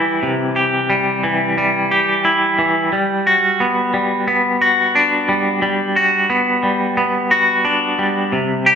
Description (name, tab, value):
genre	rock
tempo	89 BPM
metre	4/4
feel	straight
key	G major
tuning	A4 = 440 Hz
part	twangy electric guitar	solo	0.0-8.8 s	C3 to G4	-14 LUFS	equal	tremolo
room	wet large studio reverb, RT60 1.2 s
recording	band playing live in one room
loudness	-14 LUFS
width	side -7 dB against mid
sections	0.0-8.8 A section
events	none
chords	0.0 C; 2.9 Gmaj7